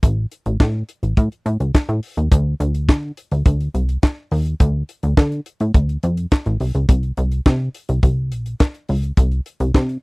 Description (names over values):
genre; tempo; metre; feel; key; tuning
early-eighties boogie funk; 105 BPM; 4/4; straight; unclear; A4 = 441 Hz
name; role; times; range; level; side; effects
plucky analog bass; bass; 0.0-10.0 s; A1 to D3; -18 LUFS; equal; none
tight funk drum kit; drums; 0.0-10.0 s; handclaps, hi-hat, kick drum, snare drum; -14 LUFS; equal; none
room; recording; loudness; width
little or no reverb; dry, close 1970s-style studio recording; -17 LUFS; side -32 dB against mid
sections
0.0-2.3 A section; 2.3-10.0 B section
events
none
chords
none